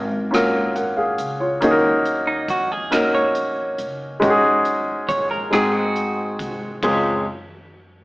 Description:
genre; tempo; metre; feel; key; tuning
slow gospel; 46 BPM (dotted quarters); 6/8; straight; Db major; A4 = 440 Hz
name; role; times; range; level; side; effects
warm grand piano; accompaniment; 0.0-7.2 s; Db2 to Gb5; -18 LUFS; equal; none
upright bass; bass; 0.0-7.2 s; Gb1 to F2; -33 LUFS; equal; none
swinging big-band drum kit; drums; 0.3-7.0 s; hi-hat, kick drum, ride cymbal, rim click, toms; -30 LUFS; equal; none
clean electric guitar; second line; 2.3-6.8 s; Eb4 to Db5; -23 LUFS; right 1 dB; none
room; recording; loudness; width
moderate studio reverb, RT60 0.7 s; band playing live in one room, AM radio sound; -17 LUFS; side -22 dB against mid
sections
0.0-6.8 A section; 6.8-8.0 B section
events
none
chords
0.0 Gbmaj7; 1.6 Ebm7; 4.2 Ab7sus4; 5.5 Ab7; 6.8 Dbmaj7

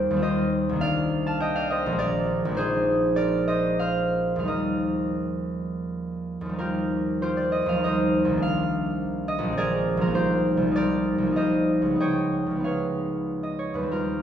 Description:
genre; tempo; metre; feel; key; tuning
classical, solo harp piece; 82-105 BPM; 3/4; rubato; Eb major; A4 = 439 Hz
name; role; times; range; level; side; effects
concert harp; solo; 0.0-14.2 s; Bb1 to A5; -22 LUFS; equal; none
room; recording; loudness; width
wet recital hall reverb, RT60 1.6 s; heard from further back in the room, nothing above 10.8 kHz; -22 LUFS; side -9 dB against mid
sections
0.0-6.6 A section; 6.6-14.2 B section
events
none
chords
0.0 Eb69; 0.8 Cm9; 2.0 Bb9; 2.6 Bb9sus4; 4.5 Ebadd9; 6.6 Eb69; 8.4 Cm9; 9.6 Bb9; 10.2 Cm11; 12.0 Db9

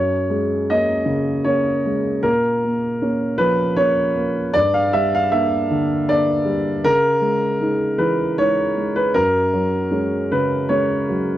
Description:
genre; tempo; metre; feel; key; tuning
neoclassical minimalist piano; 78 BPM; 3/4; rubato; unclear; A4 = 443 Hz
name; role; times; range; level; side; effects
dark grand piano; solo; 0.0-11.4 s; F#2 to E#5; -17 LUFS; equal; none
room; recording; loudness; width
light reverb; dry, close 1970s-style studio recording; -17 LUFS; side -13 dB against mid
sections
0.0-11.4 A section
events
none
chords
0.0 F#add9; 2.2 A#m; 4.6 Gm; 6.9 C#madd9; 9.1 F#add9

